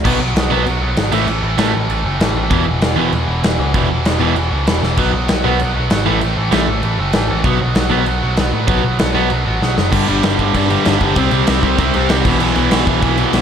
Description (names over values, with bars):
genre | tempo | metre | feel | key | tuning
punk rock | 194 BPM | 4/4 | straight | unclear | A4 = 440 Hz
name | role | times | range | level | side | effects
tight distorted guitar | riff | 0.0-13.4 s | E2 to C4 | -19 LUFS | right 12 dB | distortion
tight distorted guitar | riff | 0.0-13.4 s | E2 to C4 | -21 LUFS | right 1 dB | distortion
overdriven picked electric bass | bass | 0.0-13.4 s | E1 to A2 | -19 LUFS | equal | none
overdriven electric guitar | riff | 0.1-13.4 s | E2 to C4 | -20 LUFS | left 10 dB | none
big rock drum kit | drums | 0.1-13.4 s | crash cymbal, kick drum, snare drum, splash cymbal | -18 LUFS | equal | none
room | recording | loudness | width
little or no reverb | none | -13 LUFS | side -8 dB against mid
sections
0.0-9.9 A section; 9.9-13.4 B section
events
drum fill 4.8, 9.6-9.9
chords
0.0 B5; 1.1 A5; 2.5 E5; 5.0 B5; 6.1 A5; 7.4 B5; 9.9 G5; 11.2 C5; 12.3 E5/B